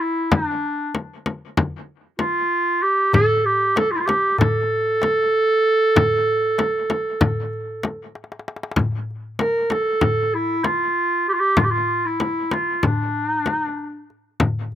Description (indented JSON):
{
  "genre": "Turkish makam ensemble",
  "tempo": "192 BPM (eighths)",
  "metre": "9/8",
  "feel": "straight",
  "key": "A makam ussak, D makam nihavent from 8.8 s",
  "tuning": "A4 = 440 Hz",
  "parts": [
    { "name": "warm clarinet", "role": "melody", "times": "0.0-14.1 s", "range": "D4 to Bb4", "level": "-19 LUFS", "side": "right 1 dB", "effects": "none" },
    { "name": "frame drum", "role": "percussion", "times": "0.3-14.5 s", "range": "none", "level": "-21 LUFS", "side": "left 2 dB", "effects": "none" },
    { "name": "darbuka", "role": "percussion", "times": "3.1-14.8 s", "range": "none", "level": "-26 LUFS", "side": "left 2 dB", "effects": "none" }
  ],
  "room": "little or no reverb",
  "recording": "recorded outdoors, with no room sound",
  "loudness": "-18 LUFS",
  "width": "side -11 dB against mid",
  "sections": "0.0-8.8 A section; 8.8-14.8 B section",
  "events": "drum fill 8.1-8.8",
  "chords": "none"
}